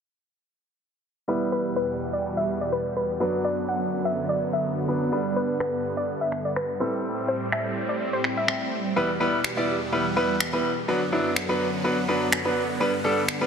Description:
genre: dance-pop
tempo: 125 BPM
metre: 4/4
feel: straight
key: E minor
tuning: A4 = 439 Hz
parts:
  - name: bright concert grand piano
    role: accompaniment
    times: 1.3-13.5 s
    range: F#3 to D5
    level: -26 LUFS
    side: equal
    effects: none
  - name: supersaw chords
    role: sustained chords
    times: 1.3-13.5 s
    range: E2 to C4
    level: -29 LUFS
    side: right 1 dB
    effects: phaser
  - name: soft round pluck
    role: melody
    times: 1.5-8.5 s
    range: B4 to F#5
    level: -28 LUFS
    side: left 1 dB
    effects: chorus, dub echo
  - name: electronic finger snaps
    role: drums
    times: 5.6-13.4 s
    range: none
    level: -28 LUFS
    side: equal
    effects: soft clipping on snare
room: wet lush hall reverb, RT60 1.8 s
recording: dense, heavily limited modern master, low-pass filter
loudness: -23 LUFS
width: side -6 dB against mid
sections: 1.3-9.0 A section; 9.0-13.5 B section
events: filter sweep 1.3-9.0; kick muted 7.0-9.0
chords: 1.3 Em; 3.2 Bm/F#; 5.1 G; 6.8 Am7; 9.0 Em; 10.9 Bm/F#; 12.8 G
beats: | 1.28 1.76 2.24 2.72 | 3.20 3.68 4.16 4.64 | 5.12 5.60 6.08 6.56 | 7.04 7.52 8.00 8.48 | 8.96 9.44 9.92 10.40 | 10.88 11.36 11.84 12.32 | 12.80 13.28

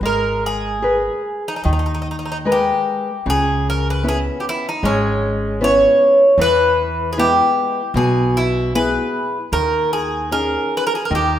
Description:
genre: fado-style ballad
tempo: 76 BPM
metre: 4/4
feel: rubato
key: G# harmonic minor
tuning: A4 = 439 Hz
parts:
  - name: nylon-string guitar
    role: accompaniment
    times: 0.0-11.4 s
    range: B2 to B4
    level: -21 LUFS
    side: left 2 dB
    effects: none
  - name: upright bass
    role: bass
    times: 0.0-11.4 s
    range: G#1 to E2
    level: -24 LUFS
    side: right 1 dB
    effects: none
  - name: Greek bouzouki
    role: melody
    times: 0.1-11.4 s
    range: C#4 to C#5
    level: -17 LUFS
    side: right 1 dB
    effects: none
room: moderate recital hall reverb, RT60 1.6 s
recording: minimal, uncompressed stereo recording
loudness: -15 LUFS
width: side -11 dB against mid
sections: 0.0-11.4 A section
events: none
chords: 0.0 G#madd9; 3.3 C#m7; 6.4 E; 9.5 D#7sus4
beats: | 0.01 0.83 1.65 2.46 | 3.26 4.04 4.83 5.61 | 6.38 7.17 7.95 8.74 | 9.52 10.31 11.11

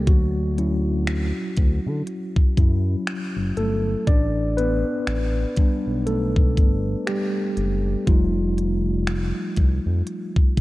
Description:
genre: contemporary R&B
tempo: 60 BPM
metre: 4/4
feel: swing 58% on 16ths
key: D major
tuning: A4 = 442 Hz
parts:
  - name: mellow tine electric piano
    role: accompaniment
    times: 0.0-10.6 s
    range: F3 to D5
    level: -24 LUFS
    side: equal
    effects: fast stereo tremolo
  - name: smooth gliding synth bass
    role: bass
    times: 0.0-10.6 s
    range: F1 to D3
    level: -24 LUFS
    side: equal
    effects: none
  - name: trap drum kit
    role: drums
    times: 0.1-10.6 s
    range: finger snaps, hi-hat, kick drum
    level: -20 LUFS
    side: equal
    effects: vintage 12-bit sampler grit
room: light reverb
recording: cassette tape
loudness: -20 LUFS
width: side -18 dB against mid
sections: 0.0-10.6 A section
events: tine electric piano solo 0.0-10.6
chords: 0.1 Dmaj9; 4.1 A9sus4; 8.1 F7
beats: | 0.07 1.07 2.07 3.07 | 4.07 5.07 6.07 7.07 | 8.07 9.07 10.07

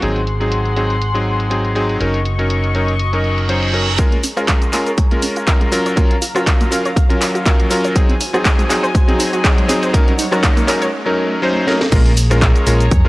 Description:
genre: nu-disco, nu disco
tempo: 121 BPM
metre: 4/4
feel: swing 55% on 16ths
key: Bb minor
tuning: A4 = 440 Hz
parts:
  - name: bright electric grand piano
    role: accompaniment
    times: 0.0-13.1 s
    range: Gb3 to C5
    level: -18 LUFS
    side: equal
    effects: vintage 12-bit sampler grit, sidechain pumping, tape echo
  - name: dark chamber string section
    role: sustained chords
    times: 0.0-13.1 s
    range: Gb3 to Db6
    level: -24 LUFS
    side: left 1 dB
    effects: sidechain pumping, low-pass filter
  - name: fingered electric bass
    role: bass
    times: 0.0-4.0, 11.9-13.0 s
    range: Gb1 to F2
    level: -17 LUFS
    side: equal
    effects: none
  - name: house drum kit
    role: drums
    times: 0.0-13.0 s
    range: cabasa, crash cymbal, handclaps, hi-hat, rim click, snare drum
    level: -21 LUFS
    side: equal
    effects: overdrive, low-pass filter on hats, low-pass filter on perc, low-pass filter on snare, low-pass filter on cymbals, low-pass filter on room
  - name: reverse cymbal and riser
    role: sound effects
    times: 3.2-11.9 s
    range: none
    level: -27 LUFS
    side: right 2 dB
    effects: none
  - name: analog pluck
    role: arpeggios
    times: 4.0-10.9 s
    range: Ab3 to Db5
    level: -24 LUFS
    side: right 1 dB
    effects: chorus, sidechain pumping, tape echo
  - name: electronic kick drum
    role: drums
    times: 4.0-13.0 s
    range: none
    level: -14 LUFS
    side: equal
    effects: overdrive
room: light reverb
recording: dry, gritty hardware recording, cassette tape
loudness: -13 LUFS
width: side -20 dB against mid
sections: 0.0-4.0 A section; 4.0-11.9 B section; 11.9-13.1 C section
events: reverse cymbal 3.2-4.0; build-up 4.0-11.9; filter sweep on string section 4.0-11.9; filter sweep on synth arpeggio sound 4.0-11.9; drum fill 11.7; drop 11.9-13.1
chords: 0.0 Ab7; 2.0 Ebm7/Gb; 4.0 Bbm7; 5.7 Gbmaj7; 8.0 Ab7; 9.9 Ebm7/Gb; 11.9 Bbm7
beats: | 0.03 0.52 1.02 1.51 | 2.01 2.50 3.00 3.50 | 3.99 4.49 4.98 5.48 | 5.97 6.47 6.97 7.46 | 7.96 8.45 8.95 9.45 | 9.94 10.44 10.93 11.43 | 11.93 12.42 12.92

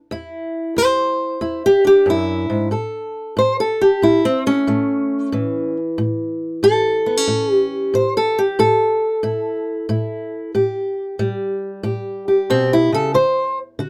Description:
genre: acoustic country blues, solo or duo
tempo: 92 BPM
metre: 4/4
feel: swing 67% on 8ths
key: A mixolydian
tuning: A4 = 440 Hz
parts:
  - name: fingerpicked old ladder-braced acoustic guitar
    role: solo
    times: 0.0-13.9 s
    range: E2 to C5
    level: -18 LUFS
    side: equal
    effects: none
room: light reverb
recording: close, detailed microphones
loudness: -18 LUFS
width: mono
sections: 0.0-2.7 A section; 2.7-13.9 A section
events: steel-string acoustic guitar solo 0.0-2.7, 2.7-13.9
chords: 0.1 E7(no3); 2.7 A7; 13.1 D7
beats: | 0.12 0.77 1.42 2.07 | 2.72 3.37 4.02 4.67 | 5.32 5.98 6.63 7.28 | 7.93 8.58 9.23 9.88 | 10.54 11.19 11.84 12.49 | 13.14 13.79

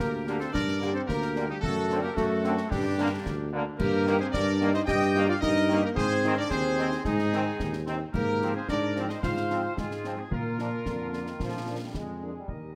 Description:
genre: military-style march for wind band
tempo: 110 BPM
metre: 2/4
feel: straight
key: unclear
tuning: A4 = 440 Hz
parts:
  - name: warm trumpet section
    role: melody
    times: 0.0-12.8 s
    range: G4 to G5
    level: -36 LUFS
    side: equal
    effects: none
  - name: bright woodwind section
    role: second line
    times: 0.0-12.8 s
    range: D4 to Eb5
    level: -38 LUFS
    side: equal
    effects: none
  - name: mellow euphonium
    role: second line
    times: 0.0-11.9 s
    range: G3 to G4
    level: -33 LUFS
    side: equal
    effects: none
  - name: warm tuba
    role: bass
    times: 0.0-12.8 s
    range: D2 to Bb2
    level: -33 LUFS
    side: equal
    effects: none
  - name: concert snare drum, concert bass drum and clash cymbals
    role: drums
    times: 0.0-12.7 s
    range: none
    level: -39 LUFS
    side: equal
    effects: none
  - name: dark French horn section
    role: accompaniment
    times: 0.3-12.3 s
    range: Eb3 to G4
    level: -40 LUFS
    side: equal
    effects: none
  - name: clear trombone section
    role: sustained chords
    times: 0.3-12.5 s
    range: D3 to D4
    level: -39 LUFS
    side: equal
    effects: none
room: moderate scoring stage reverb, RT60 1.7 s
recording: none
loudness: -28 LUFS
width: mono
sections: 0.0-12.5 A section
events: none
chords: 0.0 Gm; 1.6 D7/F#; 2.7 Gm; 3.8 Eb/G; 6.0 Ab; 8.1 Fm/Ab; 10.3 Bb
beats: | 0.53 1.08 | 1.62 2.16 | 2.71 3.25 | 3.79 4.34 | 4.88 5.42 | 5.97 6.51 | 7.05 7.60 | 8.14 8.68 | 9.23 9.77 | 10.31 10.86 | 11.40 11.95 | 12.49

